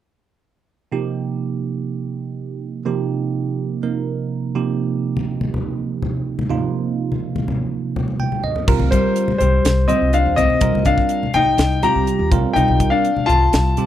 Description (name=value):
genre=electric jazz fusion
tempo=124 BPM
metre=4/4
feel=straight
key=unclear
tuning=A4 = 440 Hz
part: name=bell-like tine electric piano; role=accompaniment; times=0.9-13.9 s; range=C3 to G5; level=-22 LUFS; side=right 7 dB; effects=phaser
part: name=congas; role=percussion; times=5.2-13.9 s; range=none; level=-26 LUFS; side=left 3 dB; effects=none
part: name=upright bass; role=bass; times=8.7-13.7 s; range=C2 to Eb2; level=-19 LUFS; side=left 1 dB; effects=none
part: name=crisp fusion drum kit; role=drums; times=8.7-13.9 s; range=crash cymbal, hi-hat, kick drum, snare drum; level=-20 LUFS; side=equal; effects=none
part: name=clear concert grand piano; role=melody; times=8.9-13.9 s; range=C5 to Bb5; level=-18 LUFS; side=left 1 dB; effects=none
part: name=hollow-body jazz guitar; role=second line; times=8.9-13.9 s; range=G3 to G4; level=-22 LUFS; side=left 10 dB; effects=none
room=small room ambience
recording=dry, close 1970s-style studio recording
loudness=-17 LUFS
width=side -11 dB against mid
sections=0.9-8.7 A section; 8.7-13.9 B section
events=tine electric piano fill 8.0-8.7; drum fill 8.1-8.7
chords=0.9 F9sus4/C; 8.4 N.C.; 8.7 Cm11; 12.3 F9sus4/C